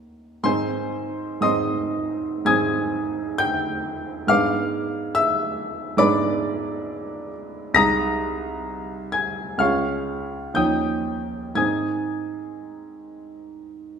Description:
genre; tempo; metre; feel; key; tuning
classical, romantic nocturne for solo piano; 54-72 BPM; 4/4; rubato; Ab major; A4 = 439 Hz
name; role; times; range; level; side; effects
clear baby grand piano; solo; 0.0-14.0 s; C2 to Bb6; -21 LUFS; equal; none
room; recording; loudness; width
moderate recital hall reverb, RT60 1.7 s; none; -21 LUFS; side -6 dB against mid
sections
0.5-14.0 A section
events
none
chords
0.5 Ab; 4.3 Abdim7; 7.8 Ab/C; 9.6 Db; 10.6 Eb9; 11.6 Ab

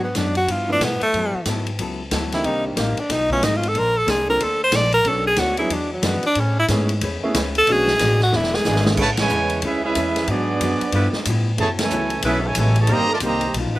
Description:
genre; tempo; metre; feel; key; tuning
jazz, big band swing; 184 BPM; 4/4; swing 63% on 8ths; A major; A4 = 440 Hz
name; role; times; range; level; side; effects
clear tenor saxophone; melody; 0.0-8.9 s; F#3 to D5; -19 LUFS; equal; slapback echo
hollow-body jazz guitar; accompaniment; 0.0-13.8 s; G2 to C#5; -28 LUFS; left 3 dB; slapback echo
upright bass; bass; 0.0-13.8 s; E1 to B2; -24 LUFS; equal; none
swinging big-band drum kit; drums; 0.1-13.6 s; crash cymbal, hi-hat, kick drum, ride cymbal, snare drum; -26 LUFS; equal; none
warm upright piano; accompaniment; 0.7-9.0 s; D#3 to A4; -26 LUFS; right 2 dB; slapback echo
warm trumpet section; melody; 9.0-13.5 s; B3 to Bb5; -23 LUFS; right 2 dB; slapback echo
mellow trombone section; second line; 9.0-13.5 s; C#3 to E4; -24 LUFS; right 3 dB; slapback echo
bright saxophone section; sustained chords; 10.9-13.8 s; G3 to B4; -25 LUFS; equal; none
room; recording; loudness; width
little or no reverb; none; -17 LUFS; side -17 dB against mid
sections
0.0-9.0 A section; 9.0-13.8 B section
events
tenor saxophone solo 0.0-9.0; drum fill 8.3-9.0; band accent 9.1, 11.8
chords
0.5 G13; 1.1 F#m11; 2.4 Cm7; 3.1 B7#11; 3.8 Bbmaj9; 5.1 Bm9; 5.7 E9; 6.4 Amaj9; 7.7 Bm7; 8.3 E7; 9.0 Amaj9; 10.3 G#m7b5; 10.9 G13; 11.6 F#m11; 12.9 Cm7

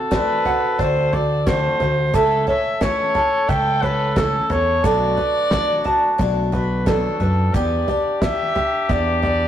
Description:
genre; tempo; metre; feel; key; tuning
indie folk with a building arrangement; 89 BPM; 4/4; straight; E minor; A4 = 440 Hz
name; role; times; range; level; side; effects
mellow trumpet; second line; 0.0-9.5 s; F#4 to A4; -27 LUFS; left 2 dB; tape echo
picked swing-style acoustic guitar; accompaniment; 0.0-9.5 s; B2 to A4; -28 LUFS; left 5 dB; none
tenor ukulele; arpeggios; 0.0-9.5 s; C4 to A5; -23 LUFS; right 2 dB; none
mellow trumpet; melody; 0.1-9.5 s; A4 to G5; -21 LUFS; equal; none
cloth-damped thuddy drum kit; drums; 0.1-9.4 s; kick drum, snare drum, toms; -24 LUFS; equal; none
fingered electric bass; bass; 0.8-9.5 s; B1 to F#2; -22 LUFS; equal; none
room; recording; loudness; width
wet stone room reverb, RT60 1.0 s; rough rehearsal-room recording, tube saturation; -16 LUFS; side -10 dB against mid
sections
0.0-9.5 A section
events
none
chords
0.0 D7; 2.1 A/C#; 4.8 Bm7; 7.5 Em7

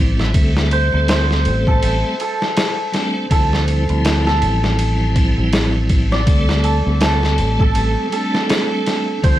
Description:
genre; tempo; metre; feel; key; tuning
trip hop; 81 BPM; 4/4; swing 58% on 16ths; unclear; A4 = 435 Hz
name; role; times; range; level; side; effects
hammered dulcimer; melody; 0.0-9.4 s; A4 to E5; -22 LUFS; right 1 dB; tape echo
tonewheel organ; accompaniment; 0.0-9.4 s; F3 to A4; -22 LUFS; equal; overdrive, chorus vibrato, slow rotary speaker, tremolo
deep dub fingered electric bass; bass; 0.0-9.4 s; A1 to D2; -17 LUFS; equal; none
trip hop sampler-style drum kit; drums; 0.2-9.4 s; kick drum, ride cymbal, snare drum; -19 LUFS; equal; none
room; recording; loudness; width
little or no reverb; vinyl crackle; -14 LUFS; side -13 dB against mid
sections
0.0-9.4 A section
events
none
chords
0.3 Am7; 3.3 Dm11; 6.3 Am7

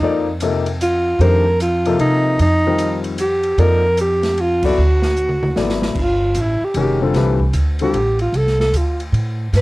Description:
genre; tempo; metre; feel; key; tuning
modal jazz; 151 BPM; 3/4; swing 64% on 8ths; F mixolydian, G mixolydian from 6.0 s; A4 = 440 Hz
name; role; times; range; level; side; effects
breathy alto saxophone; melody; 0.0-9.6 s; Eb4 to B4; -18 LUFS; right 1 dB; cassette tape
warm concert grand piano; accompaniment; 0.0-7.9 s; C3 to D5; -20 LUFS; left 4 dB; cassette tape
upright bass; bass; 0.0-9.6 s; F1 to C3; -18 LUFS; right 1 dB; none
open jazz drum kit; drums; 0.4-9.6 s; crash cymbal, hi-hat, kick drum, ride cymbal, snare drum, toms; -27 LUFS; equal; cassette tape
room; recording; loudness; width
light reverb; home recording on cassette; -14 LUFS; side -19 dB against mid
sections
0.0-6.0 A section; 6.0-9.6 B section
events
band accent 4.6; drum fill 5.2-6.0; alto saxophone solo 6.0-9.6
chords
0.0 F7sus4; 4.8 D69; 6.0 G9sus4

